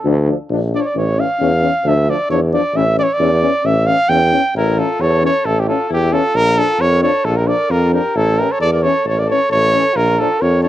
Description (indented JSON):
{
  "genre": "balkan folk",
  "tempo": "133 BPM",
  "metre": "2/4",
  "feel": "straight",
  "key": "A phrygian dominant",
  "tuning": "A4 = 440 Hz",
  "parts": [
    { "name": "warm trumpet", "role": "melody", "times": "0.0-10.7 s", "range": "G4 to G5", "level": "-16 LUFS", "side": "right 1 dB", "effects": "cassette tape" },
    { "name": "clear euphonium", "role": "accompaniment", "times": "0.0-10.7 s", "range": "C#4 to D4", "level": "-22 LUFS", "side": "left 8 dB", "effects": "cassette tape" },
    { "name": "warm trombone", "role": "accompaniment", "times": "0.0-10.7 s", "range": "E3 to F3", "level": "-28 LUFS", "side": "right 8 dB", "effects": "cassette tape" },
    { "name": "clear tuba", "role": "bass", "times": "0.0-10.7 s", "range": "A1 to F2", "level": "-17 LUFS", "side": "equal", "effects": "none" },
    { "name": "clear alto saxophone", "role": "second line", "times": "4.6-10.7 s", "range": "E4 to Bb4", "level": "-25 LUFS", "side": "left 8 dB", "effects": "cassette tape" }
  ],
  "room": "light reverb, studio ambience",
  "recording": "home recording on cassette",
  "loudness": "-13 LUFS",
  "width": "side -13 dB against mid",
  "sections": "0.0-4.5 A section; 4.5-10.7 B section",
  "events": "trumpet solo 0.0-4.5",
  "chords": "0.1 Dm; 0.9 A; 1.8 Dm; 2.7 A; 6.3 Bb; 8.2 A; 10.0 Bb5"
}